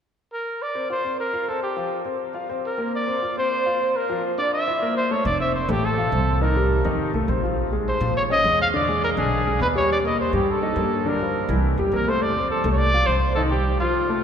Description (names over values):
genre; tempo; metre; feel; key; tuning
jazz; 207 BPM; 4/4; straight; unclear; A4 = 440 Hz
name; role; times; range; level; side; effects
warm trumpet; melody; 0.3-14.2 s; F4 to F5; -23 LUFS; equal; none
clear concert grand piano; accompaniment; 0.7-14.2 s; D3 to F5; -25 LUFS; left 2 dB; none
upright bass; bass; 5.2-13.7 s; F1 to Bb2; -24 LUFS; right 1 dB; none
room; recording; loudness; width
wet cathedral reverb, RT60 6.9 s; recorded in a church or concert hall; -20 LUFS; side -8 dB against mid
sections
0.6-5.3 A section; 5.3-14.2 B section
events
none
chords
0.0 N.C.; 0.6 C7sus4; 4.1 Bb/F; 4.7 C13b9; 5.3 F; 6.4 Cm7; 7.0 F7; 7.6 Bbm9; 8.7 E7; 9.9 Eb; 11.1 Gm7; 11.6 C7; 12.2 F6; 13.4 Cm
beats
0.03 0.32 | 0.61 0.90 1.19 1.48 | 1.77 2.06 2.35 2.64 | 2.93 3.22 3.51 3.80 | 4.09 4.38 4.67 4.96 | 5.25 5.54 5.83 6.12 | 6.41 6.71 7.00 7.29 | 7.58 7.87 8.16 8.45 | 8.74 9.03 9.32 9.61 | 9.90 10.19 10.48 10.77 | 11.06 11.35 11.64 11.93 | 12.21 12.51 12.79 13.08 | 13.37 13.66 13.95